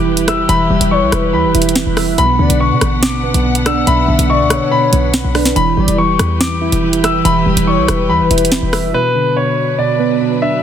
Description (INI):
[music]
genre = hip hop, drill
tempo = 142 BPM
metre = 4/4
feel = half-time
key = B minor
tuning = A4 = 440 Hz
[part]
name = clear baby grand piano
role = melody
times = 0.0-10.6 s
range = B4 to E6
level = -17 LUFS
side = left 3 dB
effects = low-pass filter, ping-pong delay
[part]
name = soft electric-piano-like synth keys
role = accompaniment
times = 0.0-10.6 s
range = B2 to E5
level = -16 LUFS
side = right 3 dB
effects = chorus, low-pass filter
[part]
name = warm studio string section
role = sustained chords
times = 0.0-10.6 s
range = B2 to F#5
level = -23 LUFS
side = left 1 dB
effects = none
[part]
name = short 808-style bass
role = bass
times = 0.0-8.9 s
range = E1 to D3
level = -17 LUFS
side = equal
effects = none
[part]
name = drill drum kit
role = drums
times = 0.2-8.8 s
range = hi-hat, rim click, snare drum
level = -18 LUFS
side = equal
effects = soft clipping on snare
[part]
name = gliding portamento lead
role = second line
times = 0.5-8.9 s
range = B4 to E5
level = -21 LUFS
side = left 5 dB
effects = chorus, ping-pong delay
[sound]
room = light reverb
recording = dense, heavily limited modern master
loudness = -11 LUFS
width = side -9 dB against mid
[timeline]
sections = 0.0-8.9 A section; 8.9-10.6 B section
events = none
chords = 0.0 Em; 2.2 Bm; 5.6 Em; 8.9 Bm